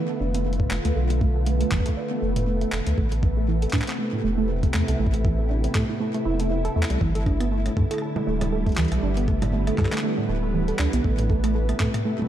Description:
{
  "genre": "IDM",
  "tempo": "119 BPM",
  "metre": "4/4",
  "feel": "swing 56% on 16ths",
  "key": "A minor",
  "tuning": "A4 = 439 Hz",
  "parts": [
    { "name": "soft string machine", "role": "sustained chords", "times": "0.0-12.3 s", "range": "C3 to B4", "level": "-28 LUFS", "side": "equal", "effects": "ensemble chorus, shimmer reverb" },
    { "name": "warbly dusty pluck", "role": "arpeggios", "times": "0.1-12.3 s", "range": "A2 to A4", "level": "-27 LUFS", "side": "right 3 dB", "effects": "chorus, digital delay, shimmer reverb" },
    { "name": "warm sub bass", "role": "bass", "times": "0.2-11.9 s", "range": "D1 to A2", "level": "-24 LUFS", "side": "equal", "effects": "none" },
    { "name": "jungle sampler-style drum kit", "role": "drums", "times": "0.3-12.3 s", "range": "congas, handclaps, hi-hat, rim click", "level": "-33 LUFS", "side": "right 1 dB", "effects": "digital delay" },
    { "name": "electronic kick drum", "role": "drums", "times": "0.6-11.9 s", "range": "none", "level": "-24 LUFS", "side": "equal", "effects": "none" }
  ],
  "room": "light reverb, digital ambience",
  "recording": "dark, warm production",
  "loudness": "-21 LUFS",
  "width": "side -11 dB against mid",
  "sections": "0.0-12.3 A section",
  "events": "none",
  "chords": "0.0 Bm7b5; 3.0 Amadd9; 7.0 Em7; 11.0 Amadd9"
}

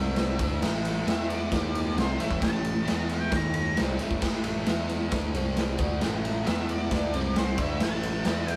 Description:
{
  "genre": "garage rock duo or trio",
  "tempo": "134 BPM",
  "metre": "4/4",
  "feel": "straight",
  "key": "A minor",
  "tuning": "A4 = 444 Hz",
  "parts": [
    { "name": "octave-fuzz lead guitar", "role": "melody", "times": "0.0-8.6 s", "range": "C5 to A#5", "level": "-37 LUFS", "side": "equal", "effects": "distortion" },
    { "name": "crunchy overdriven guitar", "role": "riff", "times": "0.0-8.6 s", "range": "A2 to E4", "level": "-33 LUFS", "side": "equal", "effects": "none" },
    { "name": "growling picked electric bass", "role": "bass", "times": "0.0-8.6 s", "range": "A1 to E2", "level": "-36 LUFS", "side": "equal", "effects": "overdrive" },
    { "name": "raw garage drum kit", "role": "drums", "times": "0.2-8.6 s", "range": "crash cymbal, kick drum, ride cymbal, snare drum", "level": "-30 LUFS", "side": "equal", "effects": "none" }
  ],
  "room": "light reverb",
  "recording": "rough rehearsal-room recording, warm saturation",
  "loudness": "-27 LUFS",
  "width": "mono",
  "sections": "0.0-8.6 A section",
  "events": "lead electric guitar solo 0.0-8.6",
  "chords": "0.4 A5; 1.1 E5; 1.5 D#5; 2.0 Am; 2.9 E5; 3.3 D#5; 3.8 Am; 4.7 E5; 5.1 D5; 5.3 C5; 5.8 A5; 6.5 E5; 6.9 D5; 7.1 C5; 7.6 A5"
}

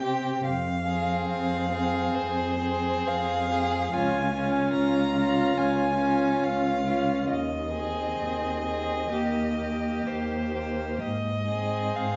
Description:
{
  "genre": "classical, slow romantic movement for string quartet",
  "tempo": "62-74 BPM",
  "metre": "4/4",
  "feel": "rubato",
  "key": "Ab major",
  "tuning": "A4 = 442 Hz",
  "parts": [
    { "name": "rich violin", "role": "melody", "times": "0.0-12.2 s", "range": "C5 to Bb5", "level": "-33 LUFS", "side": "equal", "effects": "none" },
    { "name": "warm violin", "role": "second line", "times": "0.0-12.2 s", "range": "F4 to Ab4", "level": "-33 LUFS", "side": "equal", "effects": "none" },
    { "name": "rich viola", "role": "accompaniment", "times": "0.0-12.2 s", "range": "Bb3 to Db4", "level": "-32 LUFS", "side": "equal", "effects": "none" },
    { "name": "dark cello", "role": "bass", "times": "0.0-12.2 s", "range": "Db2 to C3", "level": "-33 LUFS", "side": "equal", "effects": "none" }
  ],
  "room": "wet recital hall reverb, RT60 1.4 s",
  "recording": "recorded in a church or concert hall, nothing above 7.9 kHz",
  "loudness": "-27 LUFS",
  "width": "mono",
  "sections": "0.0-12.2 A section",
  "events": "none",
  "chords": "0.5 Fm; 3.9 Db; 7.3 Ab/Eb; 9.1 Eb; 11.0 Ab"
}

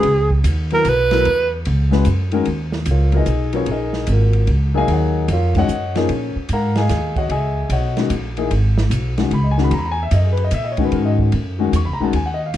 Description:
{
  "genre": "modal jazz",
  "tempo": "149 BPM",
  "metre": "3/4",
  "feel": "swing 66% on 8ths",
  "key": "unclear",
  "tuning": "A4 = 440 Hz",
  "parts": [
    { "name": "breathy tenor saxophone", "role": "melody", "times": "0.0-1.5 s", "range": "Ab4 to Cb5", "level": "-16 LUFS", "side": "right 3 dB", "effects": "none" },
    { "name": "warm concert grand piano", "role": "accompaniment", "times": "0.0-12.5 s", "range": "Eb3 to Db6", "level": "-20 LUFS", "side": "left 4 dB", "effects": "none" },
    { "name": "upright bass", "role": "bass", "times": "0.0-12.6 s", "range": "Ab1 to Bb2", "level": "-18 LUFS", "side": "right 1 dB", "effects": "none" },
    { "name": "open jazz drum kit", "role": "drums", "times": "0.0-12.6 s", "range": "hi-hat, kick drum, ride cymbal, snare drum", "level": "-28 LUFS", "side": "right 2 dB", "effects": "none" }
  ],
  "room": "light reverb",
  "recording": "dark, warm production",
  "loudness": "-15 LUFS",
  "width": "side -12 dB against mid",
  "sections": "0.0-2.5 A section; 2.5-12.6 A section",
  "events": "tenor saxophone solo 0.0-2.5",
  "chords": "0.0 Dbm11; 2.5 Ebm11; 7.3 Dbm11"
}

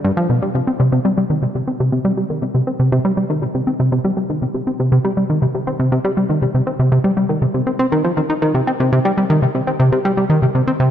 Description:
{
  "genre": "ambient",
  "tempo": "120 BPM",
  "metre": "4/4",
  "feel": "straight",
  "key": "C minor",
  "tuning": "A4 = 440 Hz",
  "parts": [
    { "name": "plucky analog bass", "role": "solo", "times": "0.0-10.9 s", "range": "G2 to Eb4", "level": "-15 LUFS", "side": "equal", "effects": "ping-pong delay" }
  ],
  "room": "wet lush hall reverb, RT60 3.0 s",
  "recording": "nothing above 10.5 kHz",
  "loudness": "-15 LUFS",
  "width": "side -10 dB against mid",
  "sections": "0.5-10.9 A section",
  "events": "none",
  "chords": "none"
}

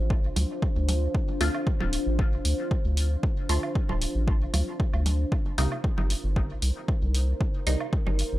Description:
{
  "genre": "dub techno",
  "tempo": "115 BPM",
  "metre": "4/4",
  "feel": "straight",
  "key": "D phrygian",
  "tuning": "A4 = 440 Hz",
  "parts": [
    { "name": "deep dark ambient pad", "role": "sustained chords", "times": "0.0-8.4 s", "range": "D4 to C5", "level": "-34 LUFS", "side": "left 1 dB", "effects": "chorus, built-in reverb, sidechain pumping" },
    { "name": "round analog bass", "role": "bass", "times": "0.0-8.4 s", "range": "D1 to D2", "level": "-25 LUFS", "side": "equal", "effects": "sidechain pumping" },
    { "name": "electronic kick drum", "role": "drums", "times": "0.1-8.0 s", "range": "none", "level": "-26 LUFS", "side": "equal", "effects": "overdrive, small room ambience" },
    { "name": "electronic hi-hat", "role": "drums", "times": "0.4-8.3 s", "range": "none", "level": "-33 LUFS", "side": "equal", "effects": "overdrive, small room ambience" },
    { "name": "congas and woodblock", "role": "percussion", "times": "0.4-8.2 s", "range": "none", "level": "-37 LUFS", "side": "right 4 dB", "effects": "sidechain pumping on perc, small room ambience, dub echo" },
    { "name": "filtered dub chord stab", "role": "stabs", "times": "1.4-7.9 s", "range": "C3 to F4", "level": "-34 LUFS", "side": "equal", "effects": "phaser, sidechain pumping, dub echo" }
  ],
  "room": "little or no reverb",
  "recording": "dry, gritty hardware recording, transformer saturation",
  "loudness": "-24 LUFS",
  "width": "side -16 dB against mid",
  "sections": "0.0-8.4 A section",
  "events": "none",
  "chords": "0.0 Dm7; 5.3 Cm7"
}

